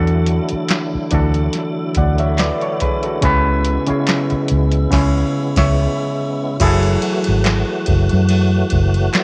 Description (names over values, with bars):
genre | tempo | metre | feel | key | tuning
R&B, neo-soul | 71 BPM | 4/4 | swing 54% on 16ths | F# minor | A4 = 445 Hz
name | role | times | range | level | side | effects
overdriven reed electric piano | accompaniment | 0.0-9.2 s | C#3 to F#5 | -21 LUFS | equal | none
tonewheel organ | sustained chords | 0.0-9.2 s | C#3 to F#4 | -27 LUFS | equal | slow rotary speaker, overdrive, chorus vibrato
vintage muted fingered electric bass | bass | 0.0-9.1 s | F#1 to F#2 | -18 LUFS | equal | transformer saturation
soft vintage rhythm box | drums | 0.1-9.2 s | crash cymbal, handclaps, hi-hat, kick drum, ride cymbal, snare drum | -23 LUFS | equal | none
room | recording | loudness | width
light reverb | none | -17 LUFS | mono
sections
0.0-6.6 A section; 6.6-9.2 B section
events
band accent 4.9-6.6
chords
0.0 E9sus4; 3.2 C#m7; 6.6 F#m9